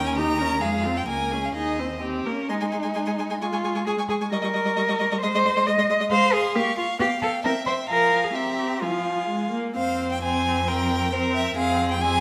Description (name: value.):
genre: quick classical-period movement for string quartet.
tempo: 133 BPM.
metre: 2/4.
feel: straight.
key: Ab major, F minor from 6.1 s.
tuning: A4 = 440 Hz.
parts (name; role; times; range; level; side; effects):
clear violin; melody; 0.0-12.2 s; C5 to Db6; -32 LUFS; equal; none.
clear violin; second line; 0.0-12.2 s; F4 to Ab5; -31 LUFS; equal; none.
rich viola; accompaniment; 0.0-12.2 s; F3 to Eb4; -30 LUFS; equal; none.
rich cello; bass; 0.0-12.2 s; Db2 to Eb5; -27 LUFS; equal; none.
room: wet recital hall reverb, RT60 1.6 s.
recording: none.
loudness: -24 LUFS.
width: mono.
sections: 0.0-2.5 A section; 2.5-9.8 B section; 9.8-12.2 A section.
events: none.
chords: 0.0 Eb7; 0.6 Fm; 1.1 Bbm7/Db; 1.6 Ab/Eb; 2.0 Eb; 2.5 Ab; 3.4 Db/Ab; 4.3 Eb7/G; 5.2 Ab; 6.1 Fm/Ab; 6.6 Bbm; 7.0 G7/B; 7.4 C; 7.9 Fm; 8.3 C7; 8.8 Fm.